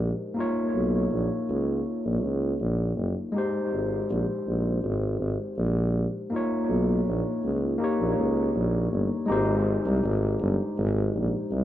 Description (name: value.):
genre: lovers rock reggae.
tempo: 81 BPM.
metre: 4/4.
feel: straight.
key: Ab major.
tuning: A4 = 438 Hz.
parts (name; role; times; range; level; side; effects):
overdriven tine electric piano; accompaniment; 0.0-11.6 s; Ab3 to C#5; -27 LUFS; left 1 dB; dub echo.
warm tuba; bass; 0.0-11.6 s; F#1 to C#2; -26 LUFS; right 1 dB; none.
room: wet stone room reverb, RT60 1.0 s.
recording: band playing live in one room.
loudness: -24 LUFS.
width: side -12 dB against mid.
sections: 0.0-9.3 A section; 9.3-11.6 B section.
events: none.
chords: 0.4 Bmaj9#11 (rootless); 3.3 Abmaj7; 6.3 Bmaj9#11; 7.8 Eb7; 9.3 Abmaj7.